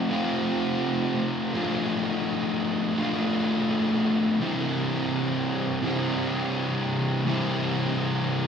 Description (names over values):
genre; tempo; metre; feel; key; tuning
rock; 84 BPM; 4/4; straight; C major; A4 = 441 Hz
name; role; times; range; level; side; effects
fuzz guitar; solo; 0.0-8.5 s; C3 to F4; -24 LUFS; equal; distortion, digital delay
room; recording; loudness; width
wet lush hall reverb, RT60 2.3 s; big arena sound, small room reverb; -24 LUFS; side -7 dB against mid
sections
0.0-4.4 A section; 4.4-8.5 B section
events
none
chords
0.0 F; 1.5 Dm/F; 4.4 C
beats
0.10 0.82 | 1.53 2.25 2.97 3.69 | 4.40 5.12 5.84 6.55 | 7.27 7.98